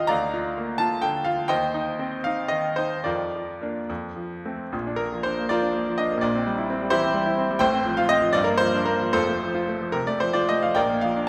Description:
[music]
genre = classical, romantic character piece for solo piano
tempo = 68-88 BPM (dotted quarters)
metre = 6/8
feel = rubato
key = Bb major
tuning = A4 = 440 Hz
[part]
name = bright grand piano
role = solo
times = 0.0-11.3 s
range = F1 to Bb5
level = -24 LUFS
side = equal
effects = none
[sound]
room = wet scoring stage reverb, RT60 1.7 s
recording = none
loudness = -24 LUFS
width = mono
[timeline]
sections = 0.0-4.7 A section; 4.7-11.3 B section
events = none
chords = 0.1 Bb/D; 1.5 Cm/Eb; 3.1 Bb/F; 3.9 F; 4.7 Bb; 6.2 C7/Bb; 7.6 F/A; 8.4 Gm7; 9.1 F; 10.8 Bb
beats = | 0.10 0.80 | 1.51 2.25 | 3.06 3.89 | 4.73 5.52 | 6.24 6.92 | 7.63 8.35 | 9.13 9.94 | 10.77

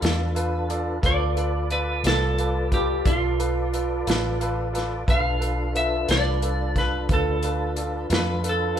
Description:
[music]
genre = slow blues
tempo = 59 BPM (dotted quarters)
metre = 12/8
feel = straight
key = G mixolydian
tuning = A4 = 441 Hz
[part]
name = clean lap steel guitar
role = melody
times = 0.0-8.8 s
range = F4 to F5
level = -26 LUFS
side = right 2 dB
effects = none
[part]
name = bright upright piano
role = accompaniment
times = 0.0-8.8 s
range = F4 to D5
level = -30 LUFS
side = equal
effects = none
[part]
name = tonewheel organ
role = sustained chords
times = 0.0-8.8 s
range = D4 to D5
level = -31 LUFS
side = left 1 dB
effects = slow rotary speaker, overdrive, chorus vibrato
[part]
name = vintage muted fingered electric bass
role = bass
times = 0.0-8.8 s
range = A1 to F2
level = -26 LUFS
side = equal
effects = none
[part]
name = warm soul drum kit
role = drums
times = 0.0-8.8 s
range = hi-hat, kick drum, snare drum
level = -26 LUFS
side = equal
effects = none
[sound]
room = light reverb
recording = band playing live in one room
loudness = -21 LUFS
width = side -9 dB against mid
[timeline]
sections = 0.0-8.8 A section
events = none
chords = 0.0 G7 (rootless)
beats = 0.02 | 1.03 2.04 3.06 4.07 | 5.08 6.09 7.10 8.11

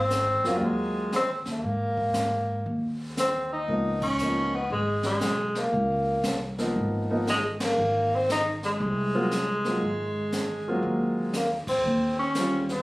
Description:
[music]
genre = jazz, small-group swing and bop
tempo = 118 BPM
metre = 4/4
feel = swing 66% on 8ths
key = Ab mixolydian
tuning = A4 = 440 Hz
[part]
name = mellow tenor saxophone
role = melody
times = 0.0-12.8 s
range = G3 to Eb4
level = -26 LUFS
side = equal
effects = none
[part]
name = upright bass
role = bass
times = 0.0-12.8 s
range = Gb1 to Ab2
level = -31 LUFS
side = equal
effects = none
[part]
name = jazz brush drum kit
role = drums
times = 0.1-12.8 s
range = brushed snare drum, hi-hat, kick drum, ride cymbal, snare drum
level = -34 LUFS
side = equal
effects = none
[part]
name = warm grand piano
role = accompaniment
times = 0.4-12.7 s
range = F3 to F4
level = -29 LUFS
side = equal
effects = none
[sound]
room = light reverb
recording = recorded on a phone in the room, studio reverb, compression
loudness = -24 LUFS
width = side -19 dB against mid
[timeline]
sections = 0.0-12.8 A section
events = band accent 3.9, 7.5, 11.6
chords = 0.0 Ab13; 3.7 Db13; 7.8 Ab13; 11.8 Eb13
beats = 0.10 0.62 1.13 | 1.64 2.15 2.67 3.18 | 3.69 4.20 4.71 5.22 | 5.73 6.24 6.75 7.26 | 7.77 8.28 8.79 9.30 | 9.81 10.32 10.83 11.34 | 11.85 12.36

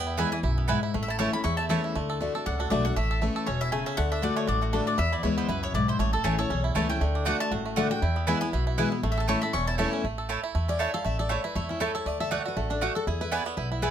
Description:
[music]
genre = bluegrass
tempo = 238 BPM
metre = 4/4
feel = swing 55% on 8ths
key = A major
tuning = A4 = 440 Hz
[part]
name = bluegrass banjo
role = melody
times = 0.0-13.9 s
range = E3 to A4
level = -33 LUFS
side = right 6 dB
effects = none
[part]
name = mandolin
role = melody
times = 0.0-9.7 s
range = F#4 to C#6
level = -31 LUFS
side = left 2 dB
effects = none
[part]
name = picked steel-string acoustic guitar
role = accompaniment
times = 0.0-13.9 s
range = E2 to F5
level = -29 LUFS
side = left 3 dB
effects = none
[part]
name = upright bass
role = bass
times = 0.0-13.9 s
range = E1 to E2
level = -30 LUFS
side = equal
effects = none
[part]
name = mandolin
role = stabs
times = 0.2-1.8, 6.2-13.9 s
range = A3 to A5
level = -30 LUFS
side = right 5 dB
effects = none
[sound]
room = little or no reverb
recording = close, detailed microphones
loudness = -25 LUFS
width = side -9 dB against mid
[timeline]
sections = 0.0-2.0 A section; 2.0-10.0 A section; 10.0-13.9 B section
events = steel-string acoustic guitar solo 10.0-13.9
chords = 0.0 E; 0.9 A; 2.0 D; 3.0 A; 4.0 D; 5.0 E; 6.0 A; 7.0 D; 8.0 E; 9.0 A; 12.1 D; 13.1 E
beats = 0.18 0.43 0.69 | 0.94 1.19 1.45 1.70 | 1.95 2.21 2.46 2.71 | 2.97 3.22 3.47 3.73 | 3.98 4.23 4.48 4.74 | 4.99 5.24 5.50 5.75 | 6.00 6.25 6.51 6.76 | 7.01 7.26 7.52 7.77 | 8.02 8.27 8.53 8.78 | 9.03 9.28 9.54 9.79 | 10.04 10.29 10.55 10.80 | 11.05 11.30 11.56 11.81 | 12.06 12.31 12.57 12.82 | 13.07 13.32 13.58 13.83

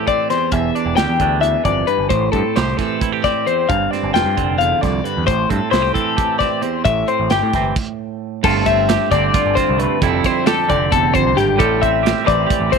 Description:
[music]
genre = math rock and midwest emo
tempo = 266 BPM (eighths)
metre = 7/8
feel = straight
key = A minor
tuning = A4 = 440 Hz
[part]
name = twangy electric guitar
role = accompaniment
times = 0.0-12.8 s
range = E2 to G4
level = -20 LUFS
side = right 14 dB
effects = wide subtle chorus
[part]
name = twelve-string electric guitar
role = arpeggios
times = 0.0-12.8 s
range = G4 to G5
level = -18 LUFS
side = left 10 dB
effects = wide subtle chorus
[part]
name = modern studio drum kit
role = drums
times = 0.1-12.8 s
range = crash cymbal, hi-hat, kick drum, snare drum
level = -21 LUFS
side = right 4 dB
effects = none
[part]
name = growling picked electric bass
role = bass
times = 0.5-12.7 s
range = E1 to A2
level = -22 LUFS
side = right 1 dB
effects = overdrive
[sound]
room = light reverb, small room ambience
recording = 1960s-style stereo with parts hard left and right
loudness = -14 LUFS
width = side -5 dB against mid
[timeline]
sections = 0.0-8.4 A section; 8.4-12.8 B section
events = stop 7.8-8.4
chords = 0.0 Am7; 0.5 Em7; 2.1 Am7; 3.7 G7sus4; 5.3 Am7; 8.4 G9sus4; 10.0 Dm11/F; 11.6 Am7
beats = 0.07 0.29 | 0.52 0.74 0.97 1.20 1.42 1.65 1.88 | 2.10 2.33 2.56 2.78 3.01 3.23 3.46 | 3.69 3.91 4.14 4.37 4.59 4.82 5.04 | 5.27 5.50 5.72 5.95 6.17 6.40 6.63 | 6.85 7.08 7.30 7.53 7.76 7.98 8.21 | 8.43 8.66 8.88 9.11 9.34 9.56 9.79 | 10.01 10.24 10.46 10.69 10.91 11.14 11.36 | 11.59 11.82 12.04 12.27 12.49 12.72

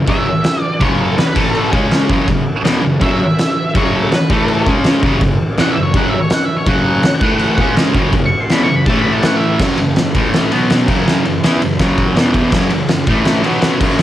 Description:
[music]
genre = garage rock duo or trio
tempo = 164 BPM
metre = 4/4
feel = straight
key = F# minor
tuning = A4 = 440 Hz
[part]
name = thick fuzz guitar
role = riff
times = 0.0-14.0 s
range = E2 to E4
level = -14 LUFS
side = equal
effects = distortion
[part]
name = octave-fuzz lead guitar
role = melody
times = 0.1-9.6 s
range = A4 to C#6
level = -20 LUFS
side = right 1 dB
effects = distortion, cassette tape, tape echo
[part]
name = oversized low-tuned drum kit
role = drums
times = 0.1-14.0 s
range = crash cymbal, kick drum, ride cymbal, snare drum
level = -15 LUFS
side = equal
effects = cassette tape
[sound]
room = small room ambience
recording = home recording on cassette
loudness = -12 LUFS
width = side -13 dB against mid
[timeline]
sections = 0.0-9.6 A section; 9.6-14.0 B section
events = lead electric guitar solo 0.0-9.6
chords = 0.0 F#5; 1.4 A5; 1.7 C#5; 2.1 F#5; 4.3 A5; 4.7 C#5; 5.0 F#5; 7.2 A5; 7.6 C#5; 7.9 F#5; 8.9 A5; 9.6 F#5; 10.1 A5; 10.5 B5; 10.9 F#5; 12.2 E5; 12.5 F#5; 13.1 A5; 13.4 B5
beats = 0.08 0.44 | 0.81 1.18 1.55 1.91 | 2.28 2.65 3.01 3.38 | 3.74 4.11 4.47 4.84 | 5.21 5.57 5.94 6.30 | 6.67 7.03 7.40 7.77 | 8.13 8.50 8.86 9.23 | 9.59 9.96 10.33 10.69 | 11.06 11.42 11.79 12.16 | 12.52 12.89 13.25 13.62 | 13.99

